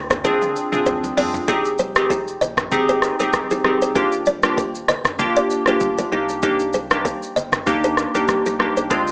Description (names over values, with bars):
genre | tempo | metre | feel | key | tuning
afrobeats | 97 BPM | 4/4 | swing 55% on 16ths | C minor | A4 = 438 Hz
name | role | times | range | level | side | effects
buzzing kalimba | riff | 0.0-9.0 s | Eb4 to Eb5 | -26 LUFS | equal | digital delay
sub bass with octave | bass | 0.0-9.1 s | Eb1 to F2 | -42 LUFS | equal | none
deep house drum kit | drums | 0.1-9.1 s | hi-hat, kick drum, rim click, shaker, toms | -25 LUFS | equal | none
glassy digital keys | accompaniment | 0.2-9.1 s | Ab3 to Ab4 | -22 LUFS | equal | chorus
congas | percussion | 0.2-8.8 s | none | -38 LUFS | equal | none
room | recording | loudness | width
light reverb | small speaker sound | -19 LUFS | mono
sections
0.0-1.5 A section; 1.5-9.1 B section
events
drum fill 0.2-1.5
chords
0.0 Bb7/D (rootless); 1.5 Fm7; 4.0 Ebmaj7; 6.1 Cm7